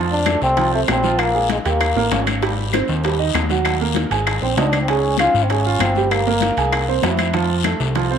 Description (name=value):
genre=Afro-Cuban jazz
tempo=195 BPM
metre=4/4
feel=straight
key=unclear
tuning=A4 = 440 Hz
part: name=warm upright piano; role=accompaniment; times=0.0-8.2 s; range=F3 to Ab5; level=-22 LUFS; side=right 10 dB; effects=none
part: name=fat analog bass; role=bass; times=0.0-8.2 s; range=G1 to F2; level=-22 LUFS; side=left 1 dB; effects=none
part: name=trombone with cup mute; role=melody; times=0.1-2.2, 4.4-7.0 s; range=Ab3 to F4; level=-20 LUFS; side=left 2 dB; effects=none
part: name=bongos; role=percussion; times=0.1-8.1 s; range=none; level=-27 LUFS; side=left 11 dB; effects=none
part: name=congas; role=percussion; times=0.1-8.2 s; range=none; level=-29 LUFS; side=left 14 dB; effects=none
part: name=claves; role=percussion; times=0.3-7.8 s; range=none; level=-27 LUFS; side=left 12 dB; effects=none
part: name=guiro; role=percussion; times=0.3-8.2 s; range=none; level=-30 LUFS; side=left 14 dB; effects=none
part: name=timbales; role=percussion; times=0.3-8.1 s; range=none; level=-28 LUFS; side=right 10 dB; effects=none
room=moderate spring reverb, RT60 1.5 s, studio reverb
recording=1960s-style stereo with parts hard left and right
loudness=-16 LUFS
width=side -8 dB against mid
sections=0.0-8.2 A section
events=none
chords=0.0 F6; 1.2 Bb7sus4; 1.8 Eb7; 2.4 Abmaj7; 3.7 Ebm; 4.3 Abadd9; 4.9 Db; 6.1 Gm; 6.7 Caug7; 7.3 F